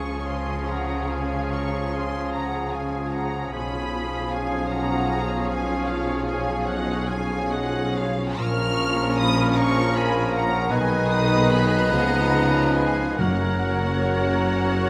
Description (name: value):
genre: classical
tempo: 43-53 BPM (dotted quarters)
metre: 12/8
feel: rubato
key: Db major, F# major from 8.4 s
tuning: A4 = 440 Hz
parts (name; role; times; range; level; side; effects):
- rich symphonic violin section; melody; 0.0-14.9 s; F5 to E#6; -33 LUFS; equal; none
- dark clarinet; second line; 0.0-14.9 s; C#4 to D#4; -36 LUFS; equal; none
- flute section; second line; 0.0-14.9 s; Db5 to C#6; -36 LUFS; equal; none
- rich symphonic violin section; second line; 0.0-14.9 s; Ab4 to D#5; -38 LUFS; equal; none
- warm oboe; second line; 0.0-14.9 s; Ab4 to B4; -34 LUFS; equal; none
- clear bassoon; accompaniment; 0.0-14.9 s; D#3 to F#3; -33 LUFS; equal; none
- rich studio viola section; accompaniment; 0.0-14.9 s; A#3 to F#4; -35 LUFS; equal; none
- mellow French horn section; sustained chords; 0.0-14.9 s; D#3 to D#4; -34 LUFS; equal; none
- concert harp; arpeggios; 0.0-14.9 s; F#2 to Db6; -37 LUFS; equal; none
- mellow trumpet section; stabs; 0.0-14.9 s; Ab4 to B4; -34 LUFS; equal; none
- mellow tuba; bass; 0.0-14.9 s; F#1 to Db2; -33 LUFS; equal; none
- rich studio double bass section; bass; 0.0-14.9 s; F#1 to Db2; -33 LUFS; equal; none
- warm studio cello section; bass; 0.0-14.9 s; F#2 to Db3; -33 LUFS; equal; none
- timpani; percussion; 13.2-14.5 s; F#2; -34 LUFS; equal; none
room: moderate scoring stage reverb, RT60 1.8 s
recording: none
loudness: -23 LUFS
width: mono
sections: 0.0-14.9 A section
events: none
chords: 0.0 Db; 3.5 Db7/Cb; 8.4 A#m; 10.7 G#m/B; 11.9 C#9; 13.2 F#